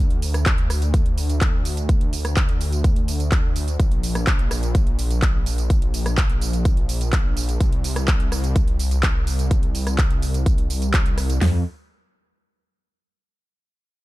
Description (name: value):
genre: EDM, festival progressive house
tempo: 126 BPM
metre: 4/4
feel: straight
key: unclear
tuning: A4 = 441 Hz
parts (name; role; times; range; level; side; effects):
- wide detuned saw bass; bass; 0.0-11.6 s; Bb1 to F2; -22 LUFS; equal; chorus, sidechain pumping
- big-room dance drum kit; drums; 0.1-11.4 s; handclaps, hi-hat, rim click, tambourine; -27 LUFS; right 1 dB; overdrive
- big-room dance drum kit; drums; 0.5-11.5 s; hi-hat, kick drum, snare drum, toms; -19 LUFS; equal; overdrive
room: little or no reverb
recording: dark, warm production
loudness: -18 LUFS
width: side -18 dB against mid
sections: 0.0-11.4 A section; 11.4-13.3 B section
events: drop 0.0-11.4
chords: none